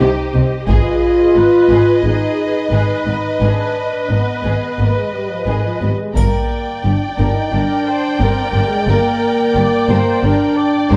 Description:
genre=cinematic, epic orchestral film score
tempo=88 BPM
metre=4/4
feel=straight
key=unclear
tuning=A4 = 440 Hz
part: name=warm symphonic violin section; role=melody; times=0.0-11.0 s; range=Eb5 to G5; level=-26 LUFS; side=equal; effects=none
part: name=warm symphonic violin section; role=second line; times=0.0-11.0 s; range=Cb4 to D5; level=-27 LUFS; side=equal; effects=none
part: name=rich symphonic viola section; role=accompaniment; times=0.0-11.0 s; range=G4 to D5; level=-26 LUFS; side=equal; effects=none
part: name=warm French horn section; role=sustained chords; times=0.0-11.0 s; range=Eb3 to F4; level=-19 LUFS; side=equal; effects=none
part: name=clear symphonic double bass section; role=bass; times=0.0-11.0 s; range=G1 to C2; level=-22 LUFS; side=equal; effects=none
part: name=dark symphonic cello section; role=bass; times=0.0-11.0 s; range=G2 to C3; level=-23 LUFS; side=equal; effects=none
part: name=taiko ensemble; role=drums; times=0.7-2.0, 6.2-7.5 s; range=none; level=-20 LUFS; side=equal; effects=none
part: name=triangle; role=percussion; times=6.2-7.5 s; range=none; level=-43 LUFS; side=equal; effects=none
room=moderate scoring stage reverb, RT60 1.9 s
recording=dark, warm production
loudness=-15 LUFS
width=mono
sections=0.0-11.0 A section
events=none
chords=0.0 Cm; 0.7 Abm; 6.2 Gm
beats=0.01 | 0.69 1.36 2.04 2.72 | 3.40 4.09 4.78 5.47 | 6.16 6.85 7.53 8.21 | 8.88 9.56 10.24 10.91

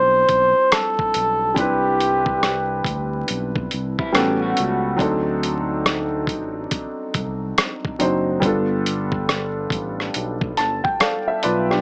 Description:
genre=R&B, neo-soul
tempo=70 BPM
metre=4/4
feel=swing 63% on 16ths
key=C major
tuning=A4 = 440 Hz
part: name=trumpet with cup mute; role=melody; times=0.0-3.3 s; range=G4 to C5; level=-20 LUFS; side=equal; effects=none
part: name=warm concert grand piano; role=accompaniment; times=0.0-11.8 s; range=F#3 to A5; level=-25 LUFS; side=equal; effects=none
part: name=smooth synth bass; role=bass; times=0.0-11.8 s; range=F#1 to D2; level=-30 LUFS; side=equal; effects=none
part: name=dusty soul sampler-style drum kit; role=drums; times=0.3-11.8 s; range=hi-hat, kick drum, rim click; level=-24 LUFS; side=equal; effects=none
part: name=electric guitar through a small old amp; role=second line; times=4.0-5.0 s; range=G3 to G4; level=-27 LUFS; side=equal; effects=subtle chorus
room=moderate studio reverb, RT60 0.6 s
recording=vinyl crackle, small speaker sound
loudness=-21 LUFS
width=mono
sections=0.0-11.8 A section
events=grand piano fill 10.1-11.8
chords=0.0 Cmaj9; 4.1 A13; 5.0 D7b9; 8.4 G9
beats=0.71 | 1.56 2.42 3.28 4.14 | 4.99 5.85 6.71 7.57 | 8.42 9.28 10.14 10.99

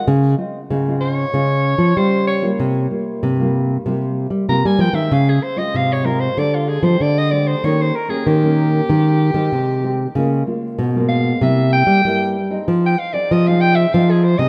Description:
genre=samba and choro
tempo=95 BPM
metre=4/4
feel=straight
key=F minor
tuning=A4 = 439 Hz
part: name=clear soprano saxophone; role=melody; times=0.0-14.5 s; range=F4 to Bb5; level=-23 LUFS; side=equal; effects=none
part: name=nylon-string guitar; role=accompaniment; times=0.0-14.5 s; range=G2 to Ab4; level=-26 LUFS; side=equal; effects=none
part: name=nylon-string guitar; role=bass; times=0.1-14.5 s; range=B2 to G3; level=-18 LUFS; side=equal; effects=none
room=light reverb, studio reverb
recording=rough home demo mix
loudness=-17 LUFS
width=mono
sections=0.0-14.5 A section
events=soprano saxophone solo 0.0-14.5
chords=0.1 Dbmaj7; 1.3 Bbm9/Db; 2.6 C7sus4; 5.1 Dbmaj7; 6.4 Fm69/D (rootless); 7.6 Eb7; 8.9 Abmaj7/Eb; 10.2 Db6; 11.4 C7; 12.7 Fm7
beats=| 0.07 0.70 1.33 1.97 | 2.60 3.23 3.86 4.49 | 5.12 5.75 6.38 7.01 | 7.64 8.27 8.90 9.53 | 10.16 10.79 11.42 12.05 | 12.68 13.31 13.94

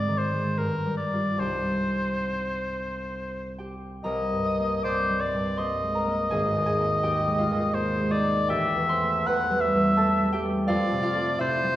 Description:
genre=classical, impressionist duo for oboe and harp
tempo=63-86 BPM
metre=3/4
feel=rubato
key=C minor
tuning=A4 = 440 Hz
part: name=bright oboe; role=melody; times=0.0-11.8 s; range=Bb4 to F#5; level=-26 LUFS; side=left 1 dB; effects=none
part: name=concert harp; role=accompaniment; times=0.0-11.8 s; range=Ab1 to Eb6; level=-26 LUFS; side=equal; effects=none
room=wet recital hall reverb, RT60 1.5 s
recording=heard from further back in the room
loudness=-23 LUFS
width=side -14 dB against mid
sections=0.0-4.0 A section; 4.0-11.8 A section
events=none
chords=0.0 Ab; 0.6 Gm7; 1.4 Cmadd9; 4.0 Cm9; 6.3 Ab69; 8.5 Am9; 10.7 F69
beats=0.58 | 1.41 2.25 3.12 | 4.04 4.84 5.58 | 6.32 7.04 7.75 | 8.49 9.26 9.97 | 10.69 11.41

